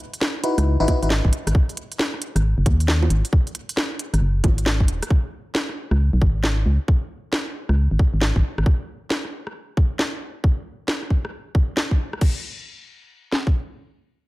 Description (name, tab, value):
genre	UK garage, two-step garage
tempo	135 BPM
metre	4/4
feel	swing 64% on 16ths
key	C# minor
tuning	A4 = 442 Hz
part	garage drum kit	drums	0.1-12.3 s	bongos, crash cymbal, hi-hat, rim click, snare drum	-25 LUFS	equal	none
part	FM electric piano	stabs	0.4-1.1 s	D#4 to B4	-24 LUFS	left 2 dB	chorus, phaser, dub echo
part	organ-like FM bass	bass	0.6-8.6 s	D#1 to D#2	-18 LUFS	equal	none
part	garage drum kit	drums	0.9-13.5 s	kick drum, snare drum	-18 LUFS	equal	none
room	digital ambience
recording	none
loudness	-19 LUFS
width	side -19 dB against mid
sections	0.0-12.2 A section; 12.2-14.3 B section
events	none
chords	0.0 C#m11; 1.3 G#5; 5.1 C#5; 8.4 N.C.